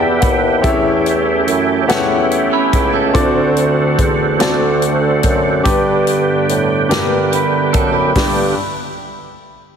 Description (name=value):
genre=slow gospel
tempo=48 BPM (dotted quarters)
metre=6/8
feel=straight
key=G major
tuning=A4 = 439 Hz
part: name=clear baby grand piano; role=accompaniment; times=0.0-8.6 s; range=G2 to B5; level=-18 LUFS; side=left 2 dB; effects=none
part: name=overdriven tonewheel organ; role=sustained chords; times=0.0-8.6 s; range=D3 to G4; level=-17 LUFS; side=right 4 dB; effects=chorus vibrato, slow rotary speaker
part: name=dark bassoon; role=bass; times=0.0-8.5 s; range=C#2 to A2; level=-18 LUFS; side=equal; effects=none
part: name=natural country drum kit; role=drums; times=0.2-8.4 s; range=hi-hat, kick drum, snare drum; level=-20 LUFS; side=left 1 dB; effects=none
part: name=clean electric guitar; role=second line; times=2.5-3.3, 7.3-8.3 s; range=C#4 to A4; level=-21 LUFS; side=right 2 dB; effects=tape echo
room=moderate concert hall reverb, RT60 2.1 s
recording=heavily compressed radio sound, multiband compression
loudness=-12 LUFS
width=side -7 dB against mid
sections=0.0-8.2 A section; 8.2-9.8 B section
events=none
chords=0.0 Em; 0.6 A7/E; 3.1 D7; 5.6 G